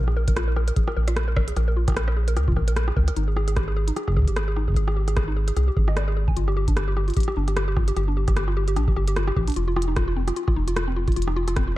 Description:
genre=IDM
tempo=150 BPM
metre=4/4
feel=swing 56% on 16ths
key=unclear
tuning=A4 = 435 Hz
part: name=mallet-like synth pluck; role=arpeggios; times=0.0-11.7 s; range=C4 to Ab5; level=-29 LUFS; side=left 2 dB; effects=chorus, ping-pong delay
part: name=round analog bass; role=bass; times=0.0-11.8 s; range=F1 to D2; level=-23 LUFS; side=equal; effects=none
part: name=glitchy drum kit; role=drums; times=0.1-11.7 s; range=hi-hat, rim click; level=-31 LUFS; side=right 1 dB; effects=none
part: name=electronic kick drum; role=drums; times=0.3-11.7 s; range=none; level=-23 LUFS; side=equal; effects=none
room=digital ambience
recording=dark, warm production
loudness=-20 LUFS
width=side -16 dB against mid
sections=0.0-11.8 A section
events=none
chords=0.0 Bb7(no3); 3.2 Abmaj7(no3); 6.4 G7(no3); 9.6 F7(no3)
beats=0.37 0.77 1.17 | 1.57 1.97 2.37 2.77 | 3.17 3.57 3.97 4.37 | 4.77 5.17 5.57 5.97 | 6.37 6.77 7.17 7.57 | 7.97 8.37 8.77 9.17 | 9.57 9.97 10.37 10.77 | 11.17 11.57

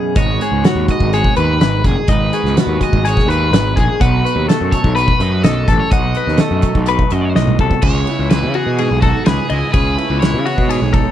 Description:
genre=math rock and midwest emo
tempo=125 BPM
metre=4/4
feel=straight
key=unclear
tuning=A4 = 440 Hz
part: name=twangy electric guitar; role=accompaniment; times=0.0-11.1 s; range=F#2 to G#4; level=-22 LUFS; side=right 16 dB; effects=lush chorus
part: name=twelve-string electric guitar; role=arpeggios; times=0.0-11.1 s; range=E4 to F#5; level=-20 LUFS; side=left 9 dB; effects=none
part: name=cranked stack guitar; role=melody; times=0.2-11.1 s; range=F#4 to D#5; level=-23 LUFS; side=right 2 dB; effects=overdrive, slapback echo
part: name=fuzz picked electric bass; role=bass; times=0.2-11.0 s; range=F#1 to C#3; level=-17 LUFS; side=equal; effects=overdrive
part: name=loose indie drum kit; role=drums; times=0.2-11.1 s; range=crash cymbal, hi-hat, kick drum, ride cymbal, snare drum, toms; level=-16 LUFS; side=equal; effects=none
room=little or no reverb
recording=none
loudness=-12 LUFS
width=side -11 dB against mid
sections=0.0-7.8 A section; 7.8-11.1 B section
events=drum fill 7.4-7.8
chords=0.2 G#m7; 4.0 B7; 7.8 C#m9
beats=| 0.17 0.65 1.13 1.60 | 2.08 2.56 3.04 3.52 | 4.00 4.48 4.96 5.44 | 5.92 6.40 6.88 7.36 | 7.83 8.31 8.79 9.27 | 9.75 10.23 10.71

